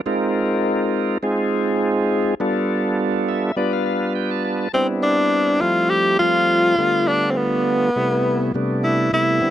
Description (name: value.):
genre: jazz.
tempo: 103 BPM.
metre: 4/4.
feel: swing 55% on 16ths.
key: unclear.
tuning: A4 = 439 Hz.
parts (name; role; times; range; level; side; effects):
bright tonewheel organ; accompaniment; 0.1-9.5 s; C3 to A5; -20 LUFS; right 1 dB; slow rotary speaker, overdrive.
clear tenor saxophone; melody; 4.7-9.5 s; B3 to G4; -17 LUFS; left 1 dB; none.
room: little or no reverb.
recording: dry, close 1970s-style studio recording.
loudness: -17 LUFS.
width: side -11 dB against mid.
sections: 0.0-4.7 A section; 4.7-9.5 B section.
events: tonewheel organ fill 3.0-4.7.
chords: 0.1 Bb9sus4; 2.4 G9; 4.7 Cmaj9; 5.6 Fmaj7; 6.8 G9; 8.0 Am9.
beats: | 0.07 0.65 1.24 1.82 | 2.40 2.99 3.57 4.16 | 4.74 5.33 5.91 6.50 | 7.08 7.67 8.25 8.84 | 9.42.